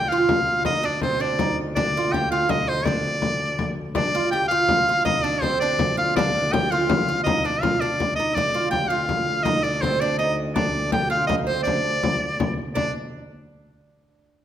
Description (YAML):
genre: medieval dance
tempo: 109 BPM (dotted quarters)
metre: 6/8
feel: straight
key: D phrygian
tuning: A4 = 440 Hz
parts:
  - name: edgy shawm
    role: melody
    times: 0.0-12.9 s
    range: C5 to G5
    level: -22 LUFS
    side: left 1 dB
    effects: none
  - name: oud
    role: second line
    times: 0.0-12.9 s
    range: C4 to G4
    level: -26 LUFS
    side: right 5 dB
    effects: none
  - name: rich viola da gamba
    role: drone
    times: 0.0-12.8 s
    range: D2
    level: -31 LUFS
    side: left 1 dB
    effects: none
  - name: frame drum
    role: percussion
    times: 0.1-12.9 s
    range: none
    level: -26 LUFS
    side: left 3 dB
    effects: none
room: wet recital hall reverb, RT60 1.4 s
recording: none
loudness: -20 LUFS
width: side -10 dB against mid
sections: 0.0-4.0 A section; 4.0-12.8 A section; 12.8-13.9 B section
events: none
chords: none